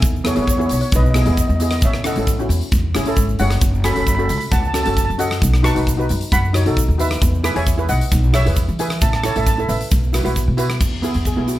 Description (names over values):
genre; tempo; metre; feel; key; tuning
calypso; 134 BPM; 4/4; straight; E major; A4 = 442 Hz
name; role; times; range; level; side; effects
steel pan; melody; 0.0-11.6 s; G#4 to C#6; -24 LUFS; equal; none
steel pan; accompaniment; 0.0-11.6 s; B3 to E5; -22 LUFS; equal; none
upright bass; bass; 0.0-11.6 s; F#1 to E3; -19 LUFS; equal; none
big rock drum kit; drums; 0.0-11.6 s; crash cymbal, hi-hat, kick drum, rim click; -20 LUFS; equal; none
tube shaker; percussion; 0.0-11.6 s; none; -32 LUFS; right 7 dB; none
room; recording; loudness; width
light reverb; none; -15 LUFS; side -15 dB against mid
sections
0.0-10.8 A section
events
none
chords
0.0 E; 1.8 A; 3.6 F#m; 5.4 B7; 7.2 E; 9.0 Asus2; 9.9 Bsus4; 10.8 E